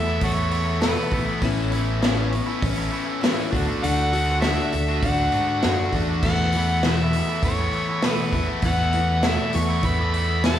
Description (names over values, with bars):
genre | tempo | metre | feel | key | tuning
folk rock and heartland rock | 100 BPM | 4/4 | straight | unclear | A4 = 440 Hz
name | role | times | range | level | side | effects
overdriven harmonica | melody | 0.0-10.6 s | F#4 to C#6 | -26 LUFS | equal | none
picked plugged-in steel-string acoustic guitar | accompaniment | 0.0-10.6 s | E2 to A4 | -26 LUFS | left 4 dB | slapback echo
pedal harmonium | sustained chords | 0.0-10.6 s | F#4 to B5 | -39 LUFS | right 1 dB | none
biting overdriven guitar | riff | 0.0-10.6 s | E2 to F#4 | -28 LUFS | right 1 dB | slapback echo
picked electric bass | bass | 0.0-10.6 s | A1 to G#2 | -25 LUFS | right 1 dB | none
unplugged drum kit | drums | 0.2-10.6 s | crash cymbal, hi-hat, kick drum, snare drum | -26 LUFS | right 1 dB | none
room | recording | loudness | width
light reverb, small room ambience | live gig heard through the venue's PA, club reverb | -20 LUFS | side -10 dB against mid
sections
0.0-10.6 A section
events
none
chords
0.0 Esus4; 1.4 Aadd9; 3.5 D; 6.2 Esus4